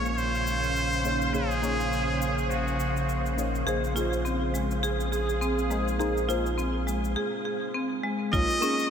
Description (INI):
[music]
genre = organic downtempo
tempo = 103 BPM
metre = 4/4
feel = swing 57% on 16ths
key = Bb minor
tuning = A4 = 439 Hz
[part]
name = trumpet with straight mute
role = melody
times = 0.0-3.4, 8.3-8.9 s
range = Gb4 to Eb5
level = -30 LUFS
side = equal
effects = tape echo
[part]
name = deep mellow chord stab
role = accompaniment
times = 0.0-8.9 s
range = Bb3 to Db6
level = -34 LUFS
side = left 2 dB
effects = chorus, phaser, sidechain pumping, diffuse ambient delay
[part]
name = bowed-like drone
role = sustained chords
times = 0.0-8.9 s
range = Bb2 to C5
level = -32 LUFS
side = right 2 dB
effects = built-in reverb, sidechain pumping
[part]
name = warm sub bass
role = bass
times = 0.0-8.4 s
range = Bb1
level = -31 LUFS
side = equal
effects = sidechain pumping
[part]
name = wind-like tuned noise texture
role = texture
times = 0.0-7.2 s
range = F5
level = -39 LUFS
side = equal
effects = built-in reverb
[part]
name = cabasa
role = drums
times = 0.1-8.9 s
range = none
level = -44 LUFS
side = left 4 dB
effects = small room reverb
[part]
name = marimba with hard mallets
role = arpeggios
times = 3.7-8.7 s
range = Ab3 to Ab4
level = -31 LUFS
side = equal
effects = diffuse ambient delay
[part]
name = electronic kick drum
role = drums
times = 8.3-8.5 s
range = none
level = -29 LUFS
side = equal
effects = small room reverb
[sound]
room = wet huge ambient reverb, RT60 7.8 s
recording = dreamy mix soaked in reverb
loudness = -25 LUFS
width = side -8 dB against mid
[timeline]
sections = 0.0-8.3 A section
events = filter sweep on synth drone 0.0-8.3; break 7.2-8.3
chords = 0.0 Bbmadd9; 8.3 Bbm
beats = 0.17 0.76 | 1.34 1.92 2.50 3.09 | 3.67 4.25 4.83 5.42 | 6.00 6.58 7.16 7.75 | 8.33